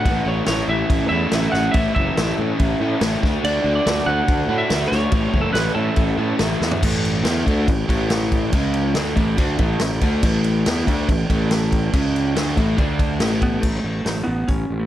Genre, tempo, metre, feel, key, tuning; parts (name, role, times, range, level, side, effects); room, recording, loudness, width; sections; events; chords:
classic rock; 141 BPM; 4/4; straight; A major; A4 = 440 Hz
lightly driven lead guitar; melody; 0.0-6.6, 13.4-14.9 s; A3 to F#5; -24 LUFS; right 1 dB
crunchy overdriven guitar; riff; 0.0-13.6 s; A2 to F#4; -22 LUFS; equal
fuzz fingered electric bass; bass; 0.0-14.9 s; F#1 to A2; -23 LUFS; equal; overdrive
vintage drum kit; drums; 0.1-14.6 s; crash cymbal, hi-hat, kick drum, snare drum, toms; -22 LUFS; equal
light reverb; -17 LUFS; side -12 dB against mid
0.0-6.8 A section; 6.8-13.6 B section; 13.6-14.9 C section
drum fill 6.6
0.1 A; 3.2 D; 5.1 A; 6.8 A5; 8.5 C#5; 9.0 A5; 11.9 C#5; 12.4 A5; 12.8 D5; 13.2 A5; 13.6 A